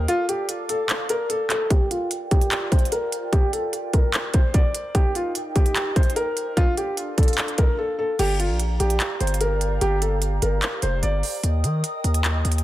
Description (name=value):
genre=hip hop, trap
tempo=148 BPM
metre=4/4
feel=half-time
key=G minor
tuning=A4 = 442 Hz
part: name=felt-muted upright piano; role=melody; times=0.0-11.4 s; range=F4 to D5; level=-25 LUFS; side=left 1 dB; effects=low-pass filter, digital delay
part: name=breathy mellow large flute ensemble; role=sustained chords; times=0.0-12.6 s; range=D4 to Eb6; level=-33 LUFS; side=right 2 dB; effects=low-pass filter
part: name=distorted 808-style bass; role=bass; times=0.0-0.1, 8.2-12.6 s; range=F1 to Eb3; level=-22 LUFS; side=equal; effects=distortion
part: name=trap drum kit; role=drums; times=0.1-12.6 s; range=crash cymbal, handclaps, hi-hat, kick drum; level=-21 LUFS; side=equal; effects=none
room=little or no reverb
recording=none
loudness=-20 LUFS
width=side -15 dB against mid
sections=0.0-1.7 A section; 1.7-8.2 B section; 8.2-12.6 C section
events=break 0.1-1.7, 7.8-8.2; filter sweep 1.7-8.2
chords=0.1 Dm; 1.7 Gm7; 4.9 Eb; 6.6 Dm; 8.2 Gm7; 11.4 Eb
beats=| 0.08 0.49 0.89 1.30 | 1.71 2.11 2.52 2.92 | 3.33 3.73 4.14 4.54 | 4.95 5.35 5.76 6.16 | 6.57 6.97 7.38 7.79 | 8.19 8.60 9.00 9.41 | 9.81 10.22 10.62 11.03 | 11.44 11.84 12.24